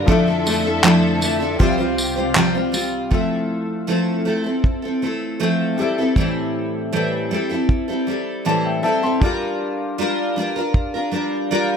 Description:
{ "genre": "acoustic pop", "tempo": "79 BPM", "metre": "4/4", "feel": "straight", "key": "F major", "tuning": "A4 = 440 Hz", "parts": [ { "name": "felt-muted upright piano", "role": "accompaniment", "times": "0.0-11.8 s", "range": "F3 to C6", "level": "-26 LUFS", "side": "left 4 dB", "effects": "plate reverb" }, { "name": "picked steel-string acoustic guitar", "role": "accompaniment", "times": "0.0-11.8 s", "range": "A2 to C5", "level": "-19 LUFS", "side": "equal", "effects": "double-tracked left and right" }, { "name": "dark studio string section", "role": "sustained chords", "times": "0.0-3.1 s", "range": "C2 to E5", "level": "-26 LUFS", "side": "left 1 dB", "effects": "plate reverb" }, { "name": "cloth-damped thuddy drum kit", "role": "drums", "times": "0.1-10.9 s", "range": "handclaps, kick drum, tambourine", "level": "-19 LUFS", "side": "equal", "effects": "none" } ], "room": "moderate studio reverb, RT60 0.6 s", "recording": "none", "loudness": "-17 LUFS", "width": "side -7 dB against mid", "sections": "0.0-3.1 A section; 3.1-11.8 B section", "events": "felt piano fill 8.1-9.2", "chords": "0.1 Dmadd9/F; 1.6 Csus4; 3.1 Fmaj7; 5.8 Am7; 9.2 Gm7" }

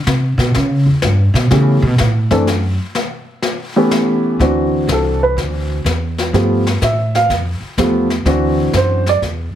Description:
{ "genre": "jazz piano trio", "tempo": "125 BPM", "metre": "4/4", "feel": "swing 67% on 8ths", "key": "D mixolydian", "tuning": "A4 = 440 Hz", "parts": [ { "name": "upright bass", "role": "bass", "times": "0.0-9.5 s", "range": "C2 to C#3", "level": "-15 LUFS", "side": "equal", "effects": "none" }, { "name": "jazz brush drum kit", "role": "drums", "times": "0.1-9.6 s", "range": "brushed snare drum, hi-hat, kick drum, snare drum", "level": "-22 LUFS", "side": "left 3 dB", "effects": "none" }, { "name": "warm baby grand piano", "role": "melody", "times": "1.5-9.2 s", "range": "E3 to F5", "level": "-15 LUFS", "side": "right 1 dB", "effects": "none" } ], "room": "light reverb", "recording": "heavily compressed radio sound", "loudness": "-13 LUFS", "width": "side -10 dB against mid", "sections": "0.0-4.4 A section; 4.4-9.6 B section", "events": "upright bass solo 0.0-4.4", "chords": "0.0 N.C.; 0.6 A9; 2.5 N.C.; 3.4 A9; 4.4 D9; 6.3 G9; 8.3 D9" }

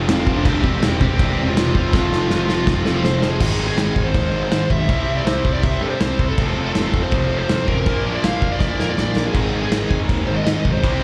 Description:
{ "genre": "punk rock", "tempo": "162 BPM", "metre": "4/4", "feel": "straight", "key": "F major", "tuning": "A4 = 441 Hz", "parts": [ { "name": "biting overdriven guitar", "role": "riff", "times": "0.0-11.0 s", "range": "F2 to C4", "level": "-28 LUFS", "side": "equal", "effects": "slapback echo" }, { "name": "tight distorted guitar", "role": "riff", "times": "0.0-11.0 s", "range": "F2 to G4", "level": "-28 LUFS", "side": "equal", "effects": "distortion, slapback echo" }, { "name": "fuzz picked electric bass", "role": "bass", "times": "0.0-10.9 s", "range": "E1 to Ab2", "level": "-25 LUFS", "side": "equal", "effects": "overdrive" }, { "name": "smooth overdriven lead guitar", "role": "melody", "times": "0.1-11.0 s", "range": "C4 to F5", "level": "-26 LUFS", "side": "equal", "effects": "tape echo" }, { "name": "loose indie drum kit", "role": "drums", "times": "0.1-10.9 s", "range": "crash cymbal, kick drum, snare drum", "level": "-23 LUFS", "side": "equal", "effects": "none" } ], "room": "small room ambience", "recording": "live gig heard through the venue's PA, club reverb", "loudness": "-19 LUFS", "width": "mono", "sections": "0.0-3.4 A section; 3.4-11.0 B section", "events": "drum fill 1.9-3.4, 8.6-9.3", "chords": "0.4 C/E; 1.9 F; 3.4 Ab; 4.9 C; 6.4 F; 7.9 Bb; 9.3 Ab" }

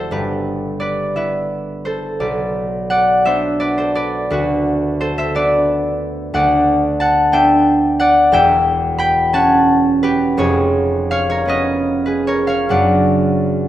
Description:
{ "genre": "classical, solo harp piece", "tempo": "47-62 BPM (dotted quarters)", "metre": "6/8", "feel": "rubato", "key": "unclear", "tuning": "A4 = 440 Hz", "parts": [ { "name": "concert harp", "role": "solo", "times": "0.0-13.7 s", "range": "E1 to B5", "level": "-14 LUFS", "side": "equal", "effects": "none" } ], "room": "moderate recital hall reverb, RT60 1.6 s", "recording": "none", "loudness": "-14 LUFS", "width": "side -12 dB against mid", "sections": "0.0-13.7 A section", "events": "none", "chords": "0.1 Em/G; 2.2 Bm; 4.3 Bm/D; 8.3 C#dim/E; 10.4 C#7/E#; 12.7 Bm/F#" }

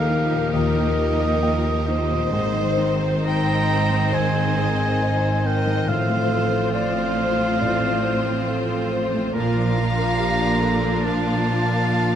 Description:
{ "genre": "cinematic, emotional film score for orchestra", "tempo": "69 BPM", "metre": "4/4", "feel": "rubato", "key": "Bb major", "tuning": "A4 = 440 Hz", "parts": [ { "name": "rich symphonic violin section", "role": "melody", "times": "0.0-12.2 s", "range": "Bb4 to G5", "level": "-30 LUFS", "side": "left 3 dB", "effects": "none" }, { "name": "clear symphonic violin section", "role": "second line", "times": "0.0-12.2 s", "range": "Eb4 to C5", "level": "-30 LUFS", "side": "left 2 dB", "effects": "none" }, { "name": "dark clarinet", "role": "second line", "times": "0.0-12.2 s", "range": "F4 to Eb5", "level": "-29 LUFS", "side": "left 1 dB", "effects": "none" }, { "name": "warm oboe", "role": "second line", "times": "0.0-12.2 s", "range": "Eb5 to Bb5", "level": "-26 LUFS", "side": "right 2 dB", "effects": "none" }, { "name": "dark concert grand piano", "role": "accompaniment", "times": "0.0-12.2 s", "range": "Eb2 to G5", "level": "-28 LUFS", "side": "left 2 dB", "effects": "none" }, { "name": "warm symphonic viola section", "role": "accompaniment", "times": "0.0-12.2 s", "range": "Eb3 to D4", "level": "-28 LUFS", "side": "right 1 dB", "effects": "none" }, { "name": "concert harp", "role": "arpeggios", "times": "0.0-12.2 s", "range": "Ab2 to D5", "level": "-29 LUFS", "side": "left 7 dB", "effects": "none" }, { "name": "rich symphonic cello section", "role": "bass", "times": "0.0-12.2 s", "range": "Eb2 to Bb2", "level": "-28 LUFS", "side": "right 2 dB", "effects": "none" }, { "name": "warm symphonic double bass section", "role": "bass", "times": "0.0-12.2 s", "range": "Ab1 to Eb2", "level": "-26 LUFS", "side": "right 3 dB", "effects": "none" } ], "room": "moderate concert hall reverb, RT60 2.2 s", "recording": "none", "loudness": "-18 LUFS", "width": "side -9 dB against mid", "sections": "0.0-12.2 A section", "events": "none", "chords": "0.0 Ebadd9; 2.3 Ab; 5.9 F/A; 9.3 Bb" }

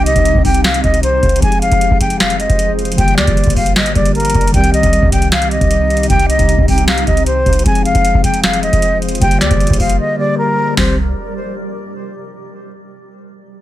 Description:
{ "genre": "hip hop, trap", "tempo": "154 BPM", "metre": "4/4", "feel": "half-time", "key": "C minor", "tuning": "A4 = 440 Hz", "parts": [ { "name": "breathy silver concert flute", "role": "melody", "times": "0.0-11.0 s", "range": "Bb4 to Ab5", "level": "-16 LUFS", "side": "left 1 dB", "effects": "low-pass filter, digital delay" }, { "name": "mellow tine electric piano", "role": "accompaniment", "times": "0.0-11.0 s", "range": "D3 to Ab4", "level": "-20 LUFS", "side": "left 2 dB", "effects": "slow stereo tremolo, low-pass filter" }, { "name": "granular cloud pad", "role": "sustained chords", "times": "0.0-11.0 s", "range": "C3 to D5", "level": "-23 LUFS", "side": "right 1 dB", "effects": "built-in reverb" }, { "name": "clean 808-style bass", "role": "bass", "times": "0.0-11.1 s", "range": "F1 to D2", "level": "-17 LUFS", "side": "equal", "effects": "none" }, { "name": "booming analog drum machine", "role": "drums", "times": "0.1-10.9 s", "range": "hi-hat, kick drum, snare drum", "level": "-15 LUFS", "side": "equal", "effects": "none" } ], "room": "little or no reverb", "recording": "none", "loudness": "-11 LUFS", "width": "side -14 dB against mid", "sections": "0.0-10.8 A section; 10.8-12.3 B section", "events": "break 10.0-10.8", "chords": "0.0 Cm; 1.4 Fm; 3.0 Gm; 4.5 Cm; 7.7 Fm; 9.2 Gm; 10.8 Cm" }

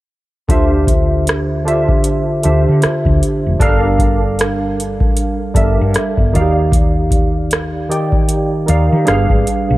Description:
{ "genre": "R&B, neo-soul", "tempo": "77 BPM", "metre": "4/4", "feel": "swing 60% on 16ths", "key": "D minor", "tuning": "A4 = 440 Hz", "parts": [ { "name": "barky tine electric piano", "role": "accompaniment", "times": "0.5-9.8 s", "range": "D3 to G5", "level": "-15 LUFS", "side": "right 1 dB", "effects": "ensemble chorus" }, { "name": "woody fretless electric bass", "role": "bass", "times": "0.5-9.8 s", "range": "F1 to Eb3", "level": "-16 LUFS", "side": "equal", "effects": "wide subtle chorus" }, { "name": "booming analog drum machine", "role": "drums", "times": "0.5-9.7 s", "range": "hi-hat, kick drum, rim click", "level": "-16 LUFS", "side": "equal", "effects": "none" } ], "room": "little or no reverb", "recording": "none", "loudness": "-12 LUFS", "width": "side -17 dB against mid", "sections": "0.5-9.8 A section", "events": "none", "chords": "0.5 Dm11; 3.6 Gm9; 6.3 Ebmaj9; 9.1 G7b9" }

